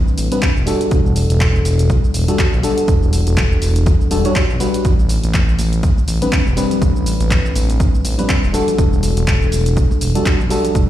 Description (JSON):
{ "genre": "deep house", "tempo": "122 BPM", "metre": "4/4", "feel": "swing 57% on 16ths", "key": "A dorian", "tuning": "A4 = 440 Hz", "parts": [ { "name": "mellow FM electric piano", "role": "stabs", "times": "0.0-10.9 s", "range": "G3 to C#5", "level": "-19 LUFS", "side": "left 1 dB", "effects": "chorus, sidechain pumping, analog delay" }, { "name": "punchy analog drum machine", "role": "drums", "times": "0.1-10.9 s", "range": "handclaps, hi-hat, shaker", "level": "-24 LUFS", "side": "equal", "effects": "overdrive" }, { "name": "smooth gliding synth bass", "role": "bass", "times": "0.2-10.9 s", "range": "E1 to B1", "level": "-17 LUFS", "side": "equal", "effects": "sidechain pumping" }, { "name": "electronic kick drum", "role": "drums", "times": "0.4-10.9 s", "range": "none", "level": "-16 LUFS", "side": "equal", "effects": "overdrive" }, { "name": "congas", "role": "percussion", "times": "4.8-10.9 s", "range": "none", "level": "-31 LUFS", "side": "right 4 dB", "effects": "none" } ], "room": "light reverb", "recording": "played on a big sound system in a bare room, large studio reverb", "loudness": "-13 LUFS", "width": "side -12 dB against mid", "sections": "0.0-10.9 A section", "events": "none", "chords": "0.0 Am11; 0.9 Em11; 4.8 Am11; 8.8 Em11", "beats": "0.42 | 0.91 1.41 1.90 2.39 | 2.88 3.37 3.87 4.36 | 4.85 5.34 5.83 6.32 | 6.82 7.31 7.80 8.29 | 8.78 9.28 9.77 10.26 | 10.75" }